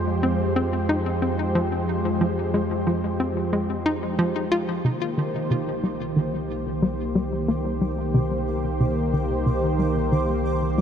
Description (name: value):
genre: ambient, sequencer-driven space music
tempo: 91 BPM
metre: 4/4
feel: straight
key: C minor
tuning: A4 = 440 Hz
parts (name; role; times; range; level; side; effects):
- lush unison pad; sustained chords; 0.0-10.8 s; Eb3 to C5; -25 LUFS; right 1 dB; chorus
- warm sub bass; bass; 0.0-10.8 s; C2 to F2; -30 LUFS; equal; none
- hollow square pluck; riff; 0.2-10.8 s; C3 to F4; -25 LUFS; left 1 dB; chorus, ping-pong delay
- pulsing gated texture; texture; 4.8-10.8 s; D6; -42 LUFS; right 3 dB; chorus, built-in reverb
room: wet huge ambient reverb, RT60 8.2 s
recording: in a vast, echoing space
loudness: -22 LUFS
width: side -8 dB against mid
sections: 0.0-4.8 A section; 4.8-10.8 B section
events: fade-in on synth texture 4.8-10.8; filter sweep on synth arpeggio sound 4.8-10.8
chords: 0.0 Fmadd9; 4.8 Cm7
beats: 0.23 0.89 1.55 | 2.21 2.87 3.53 4.19 | 4.85 5.51 6.17 6.83 | 7.49 8.14 8.80 9.46 | 10.12 10.78